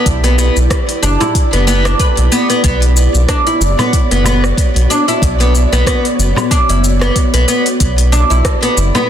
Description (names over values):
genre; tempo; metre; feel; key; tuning
organic downtempo; 93 BPM; 4/4; swing 56% on 16ths; B minor; A4 = 440 Hz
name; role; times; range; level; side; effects
ethereal airy pad; sustained chords; 0.0-9.1 s; B3 to D5; -19 LUFS; right 1 dB; ensemble chorus, built-in reverb, sidechain pumping
oud; arpeggios; 0.0-9.1 s; B3 to B4; -15 LUFS; equal; digital delay
round analog bass; bass; 0.1-8.9 s; F#1 to B1; -12 LUFS; equal; sidechain pumping
electronic kick drum; drums; 0.1-8.6 s; none; -15 LUFS; equal; none
organic electronic drum kit; drums; 0.1-9.1 s; hi-hat, rim click, shaker, woodblock; -20 LUFS; left 1 dB; soft clipping on snare
frame drum; percussion; 1.2-9.1 s; none; -22 LUFS; left 2 dB; none
room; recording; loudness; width
light reverb; dense, heavily limited modern master; -10 LUFS; side -10 dB against mid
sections
0.0-9.1 A section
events
none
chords
0.0 Em7; 2.6 Bm; 7.8 Em7